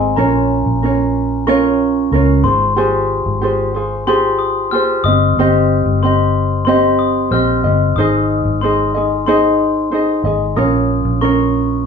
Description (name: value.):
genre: acoustic pop.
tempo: 92 BPM.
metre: 4/4.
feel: straight.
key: unclear.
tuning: A4 = 438 Hz.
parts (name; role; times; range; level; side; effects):
glockenspiel with rubber mallets; second line; 0.0-11.9 s; Ab5 to F6; -20 LUFS; left 6 dB; none.
ukulele; accompaniment; 0.0-11.9 s; C4 to Eb5; -14 LUFS; right 2 dB; none.
vintage muted fingered electric bass; bass; 0.0-11.9 s; G1 to Db2; -18 LUFS; left 2 dB; none.
room: moderate studio reverb, RT60 0.6 s.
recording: studio reverb.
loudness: -12 LUFS.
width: side -6 dB against mid.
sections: 0.0-11.9 A section.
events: none.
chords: 0.2 Bbm; 2.4 Fmadd9/Ab; 5.0 Cm/G; 8.0 Ab; 10.6 Bbm.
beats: | 0.17 0.82 1.47 2.12 | 2.77 3.42 4.07 4.72 | 5.37 6.02 6.67 7.32 | 7.96 8.61 9.26 9.91 | 10.56 11.21 11.86.